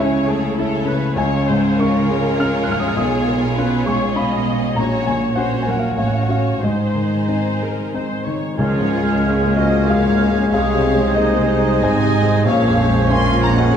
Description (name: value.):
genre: classical.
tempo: 89-103 BPM.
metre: 3/4.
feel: rubato.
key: Db major.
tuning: A4 = 439 Hz.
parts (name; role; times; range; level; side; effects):
clear baby grand piano; melody; 0.0-13.8 s; A1 to Gb6; -18 LUFS; left 2 dB; none.
rich symphonic violin section; melody; 0.0-13.8 s; C5 to C6; -30 LUFS; left 3 dB; none.
rich symphonic violin section; second line; 0.0-13.8 s; C#4 to Ab5; -27 LUFS; left 2 dB; none.
rich symphonic viola section; accompaniment; 0.0-13.8 s; F3 to Eb5; -25 LUFS; equal; none.
rich symphonic cello section; bass; 0.0-13.8 s; Ab2 to C#3; -22 LUFS; right 4 dB; none.
mellow hollow large flute ensemble; second line; 8.6-13.8 s; Db6 to F6; -28 LUFS; right 1 dB; none.
warm clarinet; second line; 8.6-13.8 s; Ab4 to Eb5; -28 LUFS; left 1 dB; none.
warm oboe; second line; 8.6-13.8 s; Ab5; -28 LUFS; right 6 dB; none.
clear bassoon; accompaniment; 8.6-13.8 s; F3 to Ab3; -26 LUFS; right 2 dB; none.
mellow French horn section; sustained chords; 8.6-13.8 s; Ab3 to F4; -26 LUFS; left 3 dB; none.
clear symphonic double bass section; bass; 8.6-13.8 s; Ab1 to Db2; -23 LUFS; right 4 dB; none.
timpani; percussion; 8.6-9.5 s; Db3; -26 LUFS; equal; none.
room: wet recital hall reverb, RT60 1.8 s.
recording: dark, warm production.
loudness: -15 LUFS.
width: side -8 dB against mid.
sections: 0.0-8.6 A section; 8.6-13.8 B section.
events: none.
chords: 0.0 A/C#; 1.2 Db; 3.0 Db7/Cb; 4.8 Gb/Bb; 6.0 Gbm/A; 6.6 Ab; 8.6 Db; 10.5 Ab/C; 12.5 Bbm7.